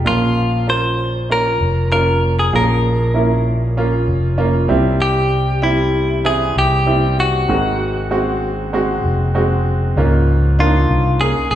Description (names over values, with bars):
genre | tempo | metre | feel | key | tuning
piano-driven pop | 97 BPM | 4/4 | straight | unclear | A4 = 441 Hz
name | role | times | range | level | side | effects
bright upright piano | accompaniment | 0.0-11.6 s | Ab2 to Ab4 | -19 LUFS | right 2 dB | none
fingered electric bass | bass | 0.0-11.6 s | F1 to Db2 | -17 LUFS | equal | none
direct-recorded clean electric guitar | melody | 0.1-11.6 s | E4 to C5 | -19 LUFS | left 1 dB | none
room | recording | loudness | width
wet large studio reverb, RT60 1.4 s | band playing live in one room | -14 LUFS | side -11 dB against mid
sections
0.0-10.0 A section; 10.0-11.6 B section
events
none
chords
0.1 Bbm; 4.7 C; 7.5 Ab7; 10.0 Db6